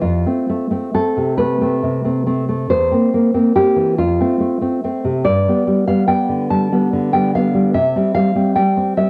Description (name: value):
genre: romantic piece for solo classical guitar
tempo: 43-49 BPM (dotted quarters)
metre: 6/8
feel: rubato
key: unclear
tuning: A4 = 436 Hz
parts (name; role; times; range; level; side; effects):
- nylon-string guitar; solo; 0.0-9.1 s; E2 to A5; -16 LUFS; equal; cassette tape
room: moderate spring reverb, RT60 1.8 s, studio reverb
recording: home recording on cassette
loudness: -17 LUFS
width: mono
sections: 0.0-9.1 A section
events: none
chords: 0.0 F; 2.7 C7/E; 4.0 F; 5.2 G; 7.7 C